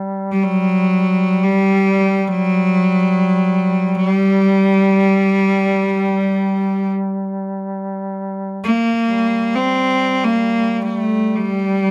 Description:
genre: caucasian folk, Caucasian lament.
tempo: free time.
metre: none.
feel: none.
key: G harmonic minor.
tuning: A4 = 435 Hz.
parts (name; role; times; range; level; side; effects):
mellow duduk; drone; 0.0-11.9 s; G3; -26 LUFS; equal; none.
bright cello; melody; 0.3-11.9 s; F#3 to C4; -17 LUFS; equal; none.
room: moderate recital hall reverb, RT60 1.5 s.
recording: close, detailed microphones.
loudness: -17 LUFS.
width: mono.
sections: 0.0-11.9 A section.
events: none.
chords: none.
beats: free time.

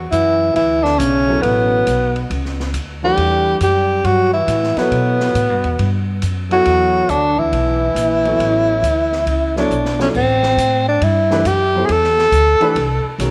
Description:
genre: modal jazz.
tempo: 138 BPM.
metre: 4/4.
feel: swing 66% on 8ths.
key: A dorian from 10.1 s.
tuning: A4 = 439 Hz.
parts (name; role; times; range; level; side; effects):
upright bass; bass; 0.0-13.3 s; A1 to B2; -23 LUFS; equal; none.
breathy tenor saxophone; melody; 0.1-13.2 s; B3 to A4; -18 LUFS; equal; none.
breathy trombone; second line; 0.1-9.7 s; B2 to G3; -26 LUFS; equal; none.
open jazz drum kit; drums; 0.1-13.3 s; crash cymbal, hi-hat, kick drum, ride cymbal, snare drum; -32 LUFS; equal; none.
warm upright piano; accompaniment; 1.3-13.3 s; D#3 to D5; -26 LUFS; equal; none.
room: moderate echo chamber reverb, RT60 2.1 s.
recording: none.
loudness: -16 LUFS.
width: mono.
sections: 0.0-10.1 A section; 10.1-13.3 B section.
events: drum fill 9.7-10.1.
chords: 0.0 Dadd9; 3.2 Em69; 6.7 Dadd9; 10.1 Am9.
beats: 0.13 0.56 1.00 | 1.43 1.87 2.30 2.74 | 3.17 3.61 4.05 4.48 | 4.92 5.35 5.79 6.23 | 6.66 7.10 7.53 7.97 | 8.41 8.84 9.28 9.71 | 10.15 10.58 11.02 11.46 | 11.89 12.32 12.76 13.20.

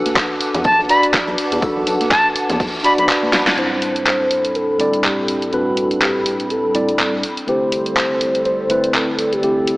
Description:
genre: deep house.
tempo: 123 BPM.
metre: 4/4.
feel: swing 57% on 16ths.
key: A dorian.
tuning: A4 = 441 Hz.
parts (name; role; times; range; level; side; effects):
warbly tape-like pad; sustained chords; 0.0-9.8 s; G3 to D6; -25 LUFS; equal; chorus, built-in reverb, sidechain pumping.
mellow tine electric piano; stabs; 0.0-9.8 s; A2 to D5; -21 LUFS; equal; medium stereo tremolo, sidechain pumping, low-pass filter, dub echo.
rubbery square bass; bass; 0.0-3.1 s; B1 to E2; -25 LUFS; equal; tube saturation, sidechain pumping.
deep house drum kit; drums; 0.1-9.8 s; handclaps, hi-hat, snare drum; -19 LUFS; equal; small room ambience.
soft-mallet drum kit; drums; 0.1-9.8 s; hi-hat, snare drum, tambourine; -32 LUFS; equal; none.
congas; percussion; 0.1-3.3 s; none; -29 LUFS; left 1 dB; overdrive, sidechain pumping on perc, small room ambience.
electronic kick drum; drums; 0.2-2.7 s; none; -25 LUFS; equal; small room ambience.
bright reedy silver concert flute; melody; 0.7-3.0 s; A5 to B5; -18 LUFS; equal; dub echo.
warm velvety synth lead; melody; 3.6-9.8 s; F#4 to C5; -20 LUFS; equal; chorus, dub echo.
room: moderate lush hall reverb, RT60 2.2 s.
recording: AM radio sound.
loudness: -15 LUFS.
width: side -21 dB against mid.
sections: 0.0-3.6 A section; 3.6-9.8 B section.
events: drum fill 3.3; band accent 3.5.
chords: 0.0 Bm7; 3.6 Am11.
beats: 0.16 0.65 1.14 | 1.62 2.11 2.60 3.09 | 3.58 4.06 4.55 5.04 | 5.53 6.01 6.50 6.99 | 7.48 7.97 8.45 8.94 | 9.43.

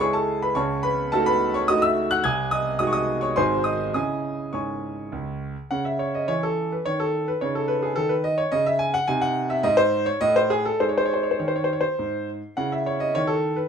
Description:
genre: classical-period piano sonatina.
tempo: 100-110 BPM.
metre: 3/4.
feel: rubato.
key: C# minor.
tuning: A4 = 440 Hz.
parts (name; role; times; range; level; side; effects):
clear concert grand piano; solo; 0.0-13.7 s; G#1 to G#6; -21 LUFS; equal; none.
room: light reverb.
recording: none.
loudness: -21 LUFS.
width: side -7 dB against mid.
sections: 0.0-5.7 A section; 5.7-13.7 A section.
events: none.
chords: 0.0 C#m; 0.6 D#m7b5/C#; 2.2 G#7/B#; 3.4 G#7; 4.0 C#m; 7.4 C#7sus2; 9.1 G#; 10.8 G#5; 12.6 C#m.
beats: 0.01 | 0.57 1.13 1.69 | 2.25 2.81 3.37 | 3.95 4.54 5.13 | 5.72 6.30 6.87 | 7.42 7.97 8.53 | 9.09 9.64 10.21 | 10.81 11.40 11.99 | 12.58 13.15.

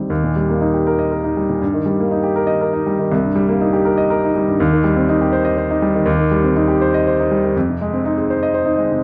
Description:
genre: classical, virtuoso piano study.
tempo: 81 BPM (dotted quarters).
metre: 6/8.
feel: rubato.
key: Eb major.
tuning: A4 = 440 Hz.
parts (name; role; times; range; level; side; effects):
warm grand piano; solo; 0.0-9.0 s; C2 to C6; -17 LUFS; equal; none.
room: light reverb.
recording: dark, warm production.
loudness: -17 LUFS.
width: mono.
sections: 0.1-9.0 A section.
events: none.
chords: 0.1 Eb; 1.6 Eb/G; 3.1 Cm7; 4.6 Cm/Eb; 7.5 Fm7.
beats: | 0.10 0.86 | 1.61 2.36 | 3.12 3.85 | 4.60 5.34 | 6.07 6.81 | 7.55 8.29 | 9.03.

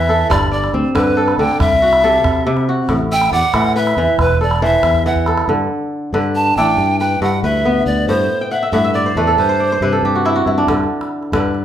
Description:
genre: west african traditional, West African string and xylophone music.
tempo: 92 BPM (dotted quarters).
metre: 12/8.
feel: straight.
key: G major.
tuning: A4 = 440 Hz.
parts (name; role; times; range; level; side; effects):
breathy bright polished pan flute; melody; 0.0-10.0 s; B4 to A5; -16 LUFS; equal; none.
kora; arpeggios; 0.0-11.6 s; G2 to G5; -17 LUFS; right 1 dB; none.
fingered electric bass; bass; 0.0-11.6 s; E1 to C3; -20 LUFS; left 1 dB; none.
calabash; percussion; 0.1-5.5, 10.7-11.6 s; none; -21 LUFS; right 1 dB; none.
room: wet large studio reverb, RT60 0.8 s.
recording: band playing live in one room.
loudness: -13 LUFS.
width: side -10 dB against mid.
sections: 0.0-5.5 A section; 5.5-11.6 B section.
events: pan flute solo 0.0-5.5; drum fill 4.9-5.5; kora fill 8.4-10.7.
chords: 0.3 G; 1.6 C; 2.9 A5; 4.2 E5; 5.5 D5/G; 6.8 G; 8.1 Am/G; 9.4 C/G.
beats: | 0.30 0.95 1.60 2.24 | 2.89 3.54 4.19 4.84 | 5.48 6.13 6.78 7.43 | 8.08 8.73 9.38 10.03 | 10.68 11.33.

